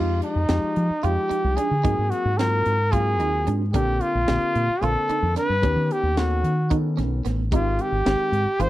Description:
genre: electric jazz fusion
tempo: 222 BPM (eighths)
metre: 7/8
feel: straight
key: unclear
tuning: A4 = 436 Hz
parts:
  - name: breathy trumpet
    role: melody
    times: 0.0-8.7 s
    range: Eb4 to C5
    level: -23 LUFS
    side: equal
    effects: slapback echo
  - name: warm grand piano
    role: accompaniment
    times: 0.0-8.7 s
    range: D3 to C5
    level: -30 LUFS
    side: left 4 dB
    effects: none
  - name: clean electric guitar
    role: stabs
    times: 0.0-8.7 s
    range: B3 to F4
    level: -30 LUFS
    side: right 9 dB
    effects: ensemble chorus
  - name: fingered electric bass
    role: bass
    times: 0.0-8.7 s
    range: Ab1 to F3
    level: -24 LUFS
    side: equal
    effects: none
  - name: tight funk drum kit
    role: drums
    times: 0.2-8.7 s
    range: hi-hat, kick drum, snare drum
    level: -26 LUFS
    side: right 1 dB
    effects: none
room: small room ambience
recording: dry, close 1970s-style studio recording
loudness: -20 LUFS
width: side -15 dB against mid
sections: 0.0-8.7 A section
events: none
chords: 0.0 Fm9; 1.8 Ab9; 3.7 Bbmaj9; 5.6 Eb7alt; 7.5 Abmaj7

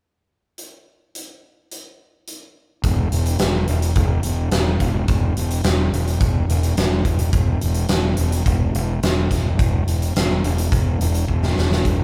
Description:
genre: classic rock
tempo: 106 BPM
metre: 4/4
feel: straight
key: unclear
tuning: A4 = 440 Hz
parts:
  - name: huge arena drum kit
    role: drums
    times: 0.6-12.0 s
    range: hi-hat, kick drum, snare drum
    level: -23 LUFS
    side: equal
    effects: none
  - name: fuzz fingered electric bass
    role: bass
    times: 2.8-12.0 s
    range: E1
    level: -22 LUFS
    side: equal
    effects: overdrive
room: moderate large studio reverb, RT60 1.3 s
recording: band playing live in one room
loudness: -20 LUFS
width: mono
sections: 0.6-2.8 A section; 2.8-11.9 B section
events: drum fill 11.3-11.9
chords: none

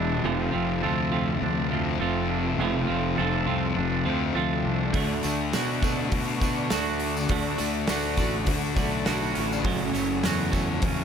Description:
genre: rock, shoegaze and dream pop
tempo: 102 BPM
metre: 4/4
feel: straight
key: unclear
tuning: A4 = 440 Hz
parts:
  - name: twangy electric guitar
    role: arpeggios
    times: 0.0-11.0 s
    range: E3 to A4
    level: -33 LUFS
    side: right 10 dB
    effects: lush chorus, digital delay
  - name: overdriven semi-hollow guitar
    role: riff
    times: 0.0-11.0 s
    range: F2 to F#4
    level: -30 LUFS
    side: right 9 dB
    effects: reverse reverb
  - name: thick fuzz guitar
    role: riff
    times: 0.0-11.0 s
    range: E2 to D4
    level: -28 LUFS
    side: left 10 dB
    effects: distortion, wide subtle chorus
  - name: fuzz fingered electric bass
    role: bass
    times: 0.0-11.0 s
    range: E1 to B2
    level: -30 LUFS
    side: equal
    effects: overdrive
  - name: loose indie drum kit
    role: drums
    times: 4.9-11.0 s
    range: hi-hat, kick drum, snare drum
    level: -29 LUFS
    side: equal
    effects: none
  - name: shimmering ambient pad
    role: sustained chords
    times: 5.9-11.0 s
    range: F#4 to C#6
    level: -36 LUFS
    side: left 1 dB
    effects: chorus, built-in reverb
  - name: tambourine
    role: percussion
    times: 5.2-10.7 s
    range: none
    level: -41 LUFS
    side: left 6 dB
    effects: none
room: light reverb, small room ambience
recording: none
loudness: -23 LUFS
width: side -7 dB against mid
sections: 0.0-11.0 A section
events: none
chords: 0.2 F6; 4.9 Dmaj7; 9.7 F#m7

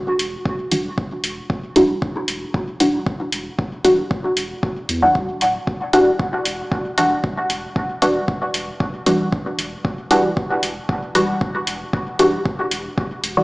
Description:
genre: dub techno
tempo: 115 BPM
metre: 4/4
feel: straight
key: E minor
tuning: A4 = 441 Hz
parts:
  - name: warm sub bass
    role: bass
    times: 0.2-13.4 s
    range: D1 to E2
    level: -32 LUFS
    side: equal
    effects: sidechain pumping
  - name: electronic hi-hat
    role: drums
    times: 0.2-13.3 s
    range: none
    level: -23 LUFS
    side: equal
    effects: none
  - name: electronic kick drum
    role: drums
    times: 0.5-13.1 s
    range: none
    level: -23 LUFS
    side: equal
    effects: none
  - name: filtered dub chord stab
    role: stabs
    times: 0.7-13.4 s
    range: E3 to F#4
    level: -18 LUFS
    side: equal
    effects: phaser, sidechain pumping, dub echo
room: moderate huge ambient reverb, RT60 7.8 s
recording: played on a big sound system in a bare room, large studio reverb, small speaker sound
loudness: -18 LUFS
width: side -22 dB against mid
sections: 0.0-13.4 A section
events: none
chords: 0.0 Em9

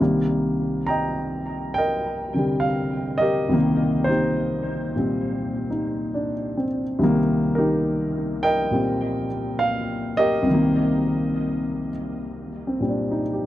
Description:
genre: solo jazz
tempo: 69 BPM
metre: 4/4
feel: swing 66% on 8ths, rubato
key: C minor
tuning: A4 = 440 Hz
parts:
  - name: warm grand piano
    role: solo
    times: 0.0-13.5 s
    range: C2 to Bb5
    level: -21 LUFS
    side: equal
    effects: tape echo
room: light reverb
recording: dry, close 1970s-style studio recording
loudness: -21 LUFS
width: side -14 dB against mid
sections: 0.0-13.5 A section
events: none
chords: 0.0 Cm7

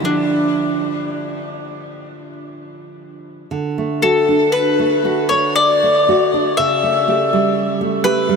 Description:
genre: romantic duo for mandolin and classical guitar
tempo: 51-62 BPM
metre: 3/4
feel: rubato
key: D minor, D major from 3.5 s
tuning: A4 = 441 Hz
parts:
  - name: mandolin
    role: melody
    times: 0.0-8.4 s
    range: D4 to E5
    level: -16 LUFS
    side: left 3 dB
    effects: diffuse ambient delay
  - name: nylon-string guitar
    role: accompaniment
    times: 0.0-8.4 s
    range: C#3 to G4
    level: -19 LUFS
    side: right 3 dB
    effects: none
room: wet huge ambient reverb, RT60 7.0 s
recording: dreamy mix soaked in reverb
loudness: -14 LUFS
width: side -5 dB against mid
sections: 0.0-3.5 A section; 3.5-8.4 B section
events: none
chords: 0.1 Dm; 3.5 D; 6.6 A7/C#

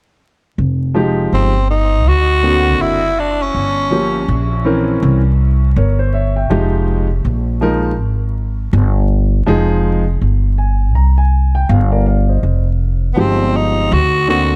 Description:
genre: hip hop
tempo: 81 BPM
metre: 4/4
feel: swing 61% on 16ths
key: F dorian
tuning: A4 = 441 Hz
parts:
  - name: upright bass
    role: bass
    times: 0.6-14.6 s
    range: F1 to D2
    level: -16 LUFS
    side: equal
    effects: none
  - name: warm concert grand piano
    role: accompaniment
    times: 0.9-14.6 s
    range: D3 to Bb5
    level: -20 LUFS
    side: equal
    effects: none
  - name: growling tenor saxophone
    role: melody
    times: 1.3-4.5, 13.1-14.6 s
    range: B3 to F#4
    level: -19 LUFS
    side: equal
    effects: dub echo
room: light reverb, studio ambience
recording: echo-heavy mix, vinyl crackle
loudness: -15 LUFS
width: mono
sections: 0.6-12.4 A section; 12.4-14.6 A section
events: grand piano fill 10.2-12.4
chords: 0.6 Fm9; 2.1 D7b13; 3.5 Gm7b5; 5.0 C7b9; 6.5 Fm9; 13.9 D7b13

